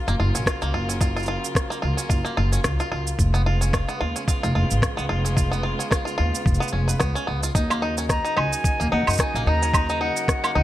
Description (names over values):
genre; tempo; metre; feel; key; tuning
folktronica; 110 BPM; 4/4; swing 56% on 16ths; F# major; A4 = 441 Hz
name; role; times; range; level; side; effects
warm string quartet; sustained chords; 0.0-10.6 s; C#3 to E#4; -32 LUFS; right 1 dB; vintage 12-bit sampler grit
bluegrass banjo; arpeggios; 0.0-10.6 s; A#3 to B4; -27 LUFS; left 1 dB; vintage 12-bit sampler grit, digital delay
upright bass; bass; 0.1-10.6 s; E#1 to F#2; -23 LUFS; equal; none
electronic cabasa, rim click and woodblock; drums; 0.1-10.5 s; none; -26 LUFS; right 1 dB; none
electronic kick drum; drums; 0.5-10.4 s; none; -23 LUFS; equal; none
reedy silver concert flute; melody; 8.1-10.6 s; F#5 to A#5; -26 LUFS; equal; digital delay
room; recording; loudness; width
studio reverb; none; -20 LUFS; side -14 dB against mid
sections
0.0-10.6 A section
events
none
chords
0.0 F#maj7; 3.2 C#7/E#; 7.6 D#m7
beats
0.47 | 1.01 1.56 2.10 2.65 | 3.19 3.74 4.29 4.83 | 5.38 5.92 6.47 7.01 | 7.56 8.10 8.65 9.19 | 9.74 10.29